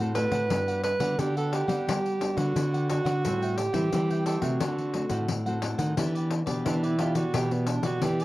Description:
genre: samba and choro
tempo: 88 BPM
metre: 4/4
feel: straight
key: G major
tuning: A4 = 437 Hz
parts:
  - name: cavaquinho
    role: accompaniment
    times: 0.0-8.2 s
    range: D4 to G5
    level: -37 LUFS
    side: right 2 dB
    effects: none
  - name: nylon-string guitar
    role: accompaniment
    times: 0.0-8.2 s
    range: A2 to G4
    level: -33 LUFS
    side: left 2 dB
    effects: none
  - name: nylon-string guitar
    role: bass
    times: 0.0-8.2 s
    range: G2 to G3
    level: -29 LUFS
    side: equal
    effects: none
  - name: pandeiro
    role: percussion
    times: 0.0-8.2 s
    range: none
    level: -32 LUFS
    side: left 4 dB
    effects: none
  - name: clear alto saxophone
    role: melody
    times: 0.1-8.2 s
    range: B3 to B4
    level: -29 LUFS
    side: right 2 dB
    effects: none
room: light reverb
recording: dry, close 1970s-style studio recording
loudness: -25 LUFS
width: side -17 dB against mid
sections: 0.0-6.0 A section; 6.0-8.2 B section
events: alto saxophone solo 6.0-8.2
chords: 0.0 D7; 0.5 Gmaj7; 3.2 Am7; 4.6 D7; 6.0 Em7

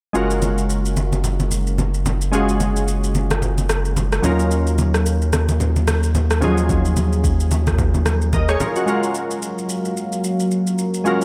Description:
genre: amapiano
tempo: 110 BPM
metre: 4/4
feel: swing 58% on 16ths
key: unclear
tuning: A4 = 439 Hz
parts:
  - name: glassy digital keys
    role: accompaniment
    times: 0.1-11.2 s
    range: F3 to Eb5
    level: -24 LUFS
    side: equal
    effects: chorus
  - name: saturated sub bass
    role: bass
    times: 0.1-8.6 s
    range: Gb1 to Eb2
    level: -21 LUFS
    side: equal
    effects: none
  - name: deep house drum kit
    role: drums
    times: 0.1-11.2 s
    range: kick drum, rim click, shaker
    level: -27 LUFS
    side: equal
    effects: overdrive
  - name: congas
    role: percussion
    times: 0.4-8.8 s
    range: none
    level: -27 LUFS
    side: equal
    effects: none
  - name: deep dark ambient pad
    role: sustained chords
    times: 9.5-11.2 s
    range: Gb3 to F5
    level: -24 LUFS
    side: equal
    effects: chorus, built-in reverb
room: light reverb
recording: none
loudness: -19 LUFS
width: mono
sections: 0.1-8.9 A section; 8.9-11.2 B section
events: none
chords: 0.1 Gbmaj7; 4.2 Ebm7; 8.9 Gbmaj7

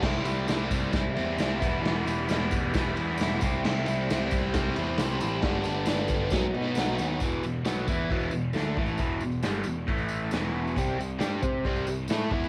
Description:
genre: garage rock duo or trio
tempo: 135 BPM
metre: 4/4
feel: straight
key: E minor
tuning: A4 = 440 Hz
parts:
  - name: overdriven electric guitar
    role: riff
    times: 0.0-12.5 s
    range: E2 to C5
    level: -31 LUFS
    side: equal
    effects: phaser
  - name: fuzz picked electric bass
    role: bass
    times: 0.0-12.5 s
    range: E1 to C3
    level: -35 LUFS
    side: equal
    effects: overdrive
  - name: raw garage drum kit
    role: drums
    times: 0.0-12.4 s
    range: crash cymbal, kick drum, ride cymbal, snare drum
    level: -32 LUFS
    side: equal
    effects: cassette tape
  - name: tambourine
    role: percussion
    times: 0.3-12.5 s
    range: none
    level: -49 LUFS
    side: equal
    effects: none
room: light reverb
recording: home recording on cassette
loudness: -28 LUFS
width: mono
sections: 0.0-7.2 A section; 7.2-12.5 B section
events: none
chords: 0.0 C; 1.6 Em; 3.4 C; 5.4 G; 6.3 B; 7.2 Em; 9.9 A5; 10.3 E5; 10.8 C5

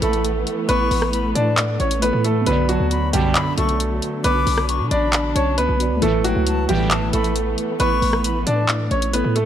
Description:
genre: hip hop, trap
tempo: 135 BPM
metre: 4/4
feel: half-time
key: unclear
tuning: A4 = 440 Hz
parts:
  - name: clear concert grand piano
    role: melody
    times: 0.0-9.5 s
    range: F#3 to D5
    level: -22 LUFS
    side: right 1 dB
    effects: low-pass filter, tape echo
  - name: breathy silver concert flute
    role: second line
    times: 0.0-8.7 s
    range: G5 to D6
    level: -27 LUFS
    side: left 6 dB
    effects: tape echo
  - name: mellow tine electric piano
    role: accompaniment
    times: 0.0-9.5 s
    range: A3 to D5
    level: -27 LUFS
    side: equal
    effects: medium stereo tremolo, low-pass filter
  - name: muted studio string section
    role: sustained chords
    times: 0.0-9.5 s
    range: D3 to D4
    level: -28 LUFS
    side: equal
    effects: none
  - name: hard-hitting 808-style bass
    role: bass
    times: 0.0-9.5 s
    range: A1 to B2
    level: -22 LUFS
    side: equal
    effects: none
  - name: trap drum kit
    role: drums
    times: 0.0-9.5 s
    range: handclaps, hi-hat, rim click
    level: -24 LUFS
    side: left 1 dB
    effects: none
  - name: resonant sweep polysynth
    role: stabs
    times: 2.5-7.0 s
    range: B1 to E3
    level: -26 LUFS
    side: right 4 dB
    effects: chorus, tape echo
room: light reverb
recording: none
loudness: -17 LUFS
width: side -10 dB against mid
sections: 0.0-9.5 A section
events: none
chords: 0.0 Asus2; 2.5 Bm; 6.0 Asus2

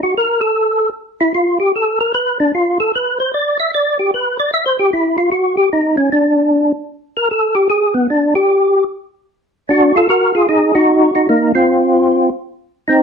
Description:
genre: jazz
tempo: 151 BPM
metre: 4/4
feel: swing 66% on 8ths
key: unclear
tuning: A4 = 440 Hz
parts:
  - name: percussive tonewheel organ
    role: solo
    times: 0.0-13.0 s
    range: Bb3 to E5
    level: -12 LUFS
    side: equal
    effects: slow rotary speaker, chorus vibrato
room: moderate studio reverb, RT60 0.7 s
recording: none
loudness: -12 LUFS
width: side -6 dB against mid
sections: 0.0-10.1 A section; 10.1-13.0 B section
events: tonewheel organ solo 0.0-10.1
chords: 0.0 N.C.; 9.3 Dm; 10.1 Ebm; 11.7 N.C.

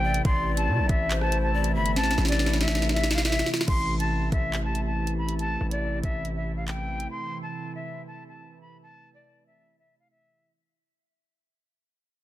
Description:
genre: hip hop, drill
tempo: 140 BPM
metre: 4/4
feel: half-time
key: A minor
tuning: A4 = 437 Hz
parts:
  - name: jazz flute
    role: melody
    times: 0.0-10.5 s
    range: D5 to C6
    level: -30 LUFS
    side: left 1 dB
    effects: low-pass filter, ping-pong delay
  - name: breathy large pan pipes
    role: second line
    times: 0.0-2.0 s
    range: C5 to E5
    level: -33 LUFS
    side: left 8 dB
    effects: ping-pong delay
  - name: warm analog pad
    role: sustained chords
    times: 0.0-10.5 s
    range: C3 to E4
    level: -33 LUFS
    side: right 1 dB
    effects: chorus
  - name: distorted 808-style bass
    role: bass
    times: 0.0-7.1 s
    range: G1 to C3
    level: -27 LUFS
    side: equal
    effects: distortion
  - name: drill drum kit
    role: drums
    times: 0.1-7.1 s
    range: crash cymbal, handclaps, hi-hat, kick drum, rim click, snare drum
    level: -27 LUFS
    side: equal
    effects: none
room: little or no reverb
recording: dense, heavily limited modern master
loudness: -23 LUFS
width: side -14 dB against mid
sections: 0.0-3.7 A section; 3.7-10.5 B section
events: drum fill 2.0-3.7; fade-out 3.7-10.5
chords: 0.0 Am

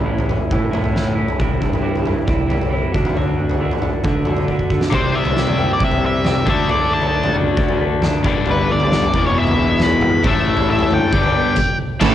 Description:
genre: quiet-loud alternative rock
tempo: 136 BPM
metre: 4/4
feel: straight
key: unclear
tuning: A4 = 439 Hz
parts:
  - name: electric guitar through a small old amp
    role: arpeggios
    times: 0.0-11.6 s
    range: E2 to A4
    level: -24 LUFS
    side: right 2 dB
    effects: wide subtle chorus, cassette tape
  - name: fuzz picked electric bass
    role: bass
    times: 0.0-12.1 s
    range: E1 to D3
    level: -22 LUFS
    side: equal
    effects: overdrive
  - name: oversized low-tuned drum kit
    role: drums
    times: 0.2-12.1 s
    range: crash cymbal, kick drum, snare drum, toms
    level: -19 LUFS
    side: equal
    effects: cassette tape
  - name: octave-fuzz lead guitar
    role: melody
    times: 4.9-12.1 s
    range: A4 to B5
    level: -20 LUFS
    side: equal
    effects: distortion, cassette tape, analog delay
  - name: crunchy overdriven guitar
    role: riff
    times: 4.9-12.1 s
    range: E2 to D4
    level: -20 LUFS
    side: left 6 dB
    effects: cassette tape
  - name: thick fuzz guitar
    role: riff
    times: 12.0-12.1 s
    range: A2 to E4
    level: -13 LUFS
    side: right 7 dB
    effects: distortion, cassette tape
room: light reverb, small room ambience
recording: home recording on cassette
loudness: -15 LUFS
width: side -11 dB against mid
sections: 0.0-4.9 A section; 4.9-12.0 B section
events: drum fill 4.5-4.9; stop 11.6-12.0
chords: 0.0 A; 1.4 C; 2.9 D; 4.9 C; 6.5 D; 8.2 G; 9.1 E; 10.2 A; 11.1 G

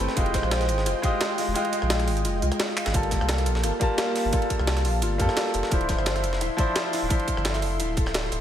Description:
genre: liquid drum and bass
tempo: 173 BPM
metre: 4/4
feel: swing 53% on 16ths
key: G dorian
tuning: A4 = 440 Hz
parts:
  - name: bright grand piano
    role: accompaniment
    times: 0.0-8.4 s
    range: F3 to A5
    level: -28 LUFS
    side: equal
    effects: tape echo
  - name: lush unison pad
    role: sustained chords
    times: 0.0-8.4 s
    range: Ab3 to C6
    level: -32 LUFS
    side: equal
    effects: chorus, sidechain pumping
  - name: concert harp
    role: arpeggios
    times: 0.0-8.4 s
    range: E4 to F5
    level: -32 LUFS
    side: left 4 dB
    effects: digital delay
  - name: warm sub bass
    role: bass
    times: 0.0-8.4 s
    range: D1 to G2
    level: -27 LUFS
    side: equal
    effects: none
  - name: breakbeat sampler-style drum kit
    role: drums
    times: 0.1-8.4 s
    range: hi-hat, ride cymbal, snare drum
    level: -34 LUFS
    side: right 2 dB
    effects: high-pass filter on cymbals, high-pass filter on snare, high-pass filter on hats
  - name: electronic kick drum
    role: drums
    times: 0.2-8.0 s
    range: none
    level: -26 LUFS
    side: equal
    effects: none
  - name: jungle sampler-style drum kit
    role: drums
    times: 0.2-8.4 s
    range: handclaps, hi-hat, rim click, snare drum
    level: -31 LUFS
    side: right 1 dB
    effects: none
room: light reverb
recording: none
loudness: -22 LUFS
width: side -10 dB against mid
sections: 0.0-8.4 A section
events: kick drops out 1.6-2.9; drum fill 2.8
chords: 0.2 Fm9; 2.9 Gm9; 5.7 Dm9

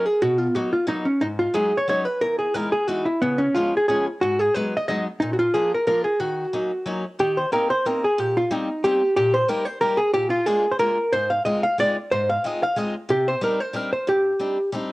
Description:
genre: musette waltz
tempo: 182 BPM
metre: 3/4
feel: straight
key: Eb minor, Eb major from 7.2 s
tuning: A4 = 440 Hz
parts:
  - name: hollow-body jazz guitar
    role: melody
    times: 0.0-14.7 s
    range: Cb4 to F5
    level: -20 LUFS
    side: equal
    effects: cassette tape
  - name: picked steel-string acoustic guitar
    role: accompaniment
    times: 0.0-14.9 s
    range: E2 to G4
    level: -28 LUFS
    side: left 1 dB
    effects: cassette tape
room: light reverb, studio reverb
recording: home recording on cassette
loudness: -20 LUFS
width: side -20 dB against mid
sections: 0.0-7.2 A section; 7.2-14.9 B section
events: none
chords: 0.2 Bmaj7; 1.2 Ab7sus4; 2.2 Emaj7; 3.2 Db7; 4.2 Abm7; 5.2 Bb; 6.2 Ebm7; 7.2 Eb6; 9.2 Eb/Bb; 10.1 Bb7; 11.1 Ab6; 13.1 Cmadd9

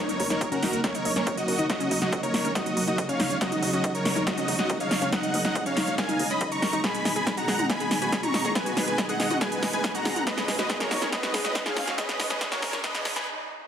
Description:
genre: uplifting trance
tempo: 140 BPM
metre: 4/4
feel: straight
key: Eb minor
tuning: A4 = 441 Hz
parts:
  - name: dense compressed supersaw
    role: melody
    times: 0.0-13.3 s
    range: Gb4 to Db6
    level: -28 LUFS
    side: right 1 dB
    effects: cassette tape, sidechain pumping, digital delay
  - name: dark symphonic string section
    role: sustained chords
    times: 0.0-13.7 s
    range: Cb3 to Eb4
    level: -33 LUFS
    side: right 1 dB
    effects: sidechain pumping
  - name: wide unison pluck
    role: arpeggios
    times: 0.0-13.2 s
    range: Db4 to Ab5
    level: -33 LUFS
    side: left 2 dB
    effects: sidechain pumping, digital delay
  - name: big-room dance drum kit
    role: drums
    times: 0.1-13.2 s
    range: hi-hat, snare drum, toms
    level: -28 LUFS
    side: equal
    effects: overdrive, sidechain pumping on toms, sidechain pumping on hats
  - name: plucky analog bass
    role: bass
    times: 0.2-13.2 s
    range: Eb1 to Ab2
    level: -37 LUFS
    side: equal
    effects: none
  - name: electronic kick drum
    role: drums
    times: 0.4-12.9 s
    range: none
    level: -34 LUFS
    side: equal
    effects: overdrive, high-pass filter on kick, high-pass filter on room
  - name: riser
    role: sound effects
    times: 8.7-13.3 s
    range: none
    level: -38 LUFS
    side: equal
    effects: none
room: moderate digital room reverb, RT60 1.3 s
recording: dense, heavily limited modern master, high-pass filter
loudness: -24 LUFS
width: side -8 dB against mid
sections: 0.0-13.7 A section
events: build-up 0.0-13.7; drum fill 0.0-13.3; filter sweep 0.0-13.7; break 13.3-13.7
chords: 0.0 Ebm7; 6.8 Abm

